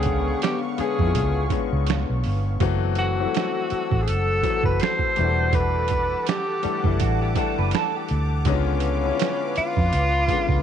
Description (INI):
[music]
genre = R&B, neo-soul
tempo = 82 BPM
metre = 4/4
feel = swing 56% on 16ths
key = unclear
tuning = A4 = 440 Hz
[part]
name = warm tenor saxophone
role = melody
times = 0.0-10.6 s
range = C#4 to C5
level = -25 LUFS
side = equal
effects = none
[part]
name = clear grand piano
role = accompaniment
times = 0.0-10.6 s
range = C#3 to G5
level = -27 LUFS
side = left 14 dB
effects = none
[part]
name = lush unison pad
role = sustained chords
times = 0.0-10.6 s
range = B3 to E6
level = -32 LUFS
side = left 1 dB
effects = chorus
[part]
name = vintage muted fingered electric bass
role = bass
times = 0.0-10.6 s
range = E1 to E#2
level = -23 LUFS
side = equal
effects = none
[part]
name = boom bap sampler-style drum kit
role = drums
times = 0.0-10.6 s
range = finger snaps, hi-hat, kick drum, snare drum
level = -26 LUFS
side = right 4 dB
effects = none
[part]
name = electric guitar through a small old amp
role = second line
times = 7.0-8.4 s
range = F#4 to B4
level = -28 LUFS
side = right 17 dB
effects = lush chorus
[sound]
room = little or no reverb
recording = 1960s-style stereo with parts hard left and right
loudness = -20 LUFS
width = side -9 dB against mid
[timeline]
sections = 0.0-10.6 A section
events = none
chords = 0.0 C#7b9; 2.6 F#m7b5; 5.2 Em11; 8.5 C#7b9